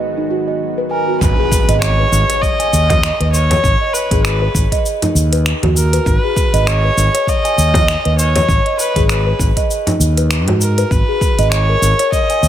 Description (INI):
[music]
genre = organic downtempo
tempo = 99 BPM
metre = 4/4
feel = swing 57% on 16ths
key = G# minor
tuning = A4 = 439 Hz
[part]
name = bowed-like drone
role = sustained chords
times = 0.0-1.2 s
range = D#3 to F#4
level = -27 LUFS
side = equal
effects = built-in reverb, sidechain pumping
[part]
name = fretless electric bass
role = bass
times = 0.0-12.5 s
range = G#1 to G#2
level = -15 LUFS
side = equal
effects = tube saturation
[part]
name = steel tongue drum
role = arpeggios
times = 0.2-12.4 s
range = D#4 to G#5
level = -19 LUFS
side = equal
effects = ping-pong delay
[part]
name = clear kamancheh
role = melody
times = 0.9-12.5 s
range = A#4 to D#5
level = -18 LUFS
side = right 1 dB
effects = ping-pong delay
[part]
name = electronic kick drum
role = drums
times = 1.2-12.3 s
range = none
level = -17 LUFS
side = equal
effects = none
[part]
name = organic electronic drum kit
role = drums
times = 1.2-12.5 s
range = cabasa, finger snaps, hi-hat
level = -22 LUFS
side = equal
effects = none
[part]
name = impact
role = sound effects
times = 1.2-3.6 s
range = none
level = -23 LUFS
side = equal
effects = none
[part]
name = frame drum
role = percussion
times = 2.9-10.6 s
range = none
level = -20 LUFS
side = left 2 dB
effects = none
[sound]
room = light reverb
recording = none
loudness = -12 LUFS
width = side -11 dB against mid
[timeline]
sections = 0.0-1.2 A section; 1.2-12.5 B section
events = impact 1.2-3.6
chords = 0.0 G#m7; 1.2 G#m; 10.9 D#5/G#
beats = 0.00 0.61 | 1.21 1.82 2.43 3.03 | 3.64 4.25 4.85 5.46 | 6.06 6.67 7.28 7.88 | 8.49 9.09 9.70 10.30 | 10.91 11.52 12.12